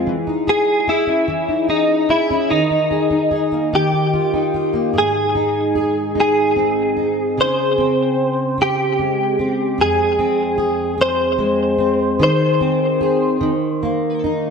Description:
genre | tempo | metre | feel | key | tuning
pop | 49 BPM (dotted quarters) | 6/8 | straight | Ab major | A4 = 439 Hz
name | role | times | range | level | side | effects
fingerpicked plugged-in steel-string acoustic guitar | accompaniment | 0.0-14.5 s | F2 to Ab4 | -19 LUFS | equal | double-tracked left and right
direct-recorded clean electric guitar | melody | 0.5-14.2 s | Eb4 to C5 | -17 LUFS | equal | ensemble chorus, ping-pong delay
room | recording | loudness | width
moderate lush hall reverb, RT60 2.2 s | dark, warm production | -15 LUFS | side -5 dB against mid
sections
0.0-4.9 A section; 4.9-14.5 B section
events
none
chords
0.1 Dbmadd9/Fb; 2.5 Ebsus4; 3.7 Ebadd9; 4.9 Ab; 7.4 Db5; 9.8 Fm; 12.2 Ab/Eb; 13.4 Eb5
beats
| 0.07 1.27 | 2.49 3.71 | 4.93 6.16 | 7.37 8.59 | 9.79 10.99 | 12.20 13.42

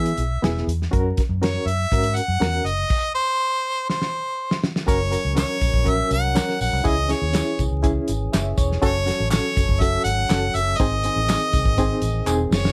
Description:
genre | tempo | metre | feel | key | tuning
uptempo 1960s-style soul | 122 BPM | 4/4 | straight | unclear | A4 = 440 Hz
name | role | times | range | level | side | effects
bright harmonica | melody | 0.0-12.7 s | B#4 to F#5 | -26 LUFS | equal | none
barky reed electric piano | accompaniment | 0.0-12.6 s | B3 to E5 | -28 LUFS | equal | overdrive, fast tremolo
vintage muted fingered electric bass | bass | 0.0-12.7 s | E1 to E3 | -26 LUFS | equal | none
warm soul drum kit | drums | 0.1-12.7 s | crash cymbal, hi-hat, kick drum, snare drum | -25 LUFS | equal | none
tonewheel organ | sustained chords | 4.9-12.7 s | D#3 to A#4 | -34 LUFS | equal | stopped rotary speaker
tambourine and handclaps | percussion | 4.9-12.6 s | none | -36 LUFS | equal | none
room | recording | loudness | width
light reverb | vinyl crackle | -21 LUFS | mono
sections
0.0-4.9 A section; 4.9-12.7 B section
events
drum fill 3.9-4.9, 12.3-12.7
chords
0.0 E; 0.9 F#; 2.9 N.C.; 4.9 F#; 6.9 C#m; 8.8 F#m; 10.8 G#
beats
0.43 | 0.93 1.42 1.91 2.41 | 2.90 3.40 3.89 4.38 | 4.88 5.37 5.86 6.36 | 6.85 7.34 7.84 8.33 | 8.82 9.32 9.81 10.31 | 10.80 11.29 11.79 12.28

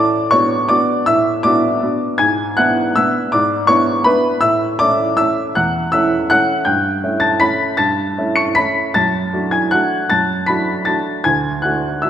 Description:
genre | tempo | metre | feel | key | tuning
classical, piano waltz | 149-176 BPM | 3/4 | rubato | A major | A4 = 439 Hz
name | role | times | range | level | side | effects
warm upright piano | solo | 0.0-12.1 s | D2 to C#7 | -13 LUFS | equal | none
room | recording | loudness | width
moderate concert hall reverb, RT60 2.3 s | recorded in a church or concert hall | -13 LUFS | side -10 dB against mid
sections
0.0-12.1 A section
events
none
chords
0.0 Bm7/A; 2.2 E7/G#; 4.4 A; 6.7 A7/G; 9.0 D/F#; 11.3 D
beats
0.32 0.69 | 1.06 1.44 1.82 | 2.19 2.57 2.96 | 3.33 3.69 4.06 | 4.42 4.80 5.18 | 5.56 5.92 6.30 | 6.66 7.02 7.41 | 7.79 8.17 8.57 | 8.95 9.33 9.73 | 10.11 10.48 10.88 | 11.26 11.64 12.03

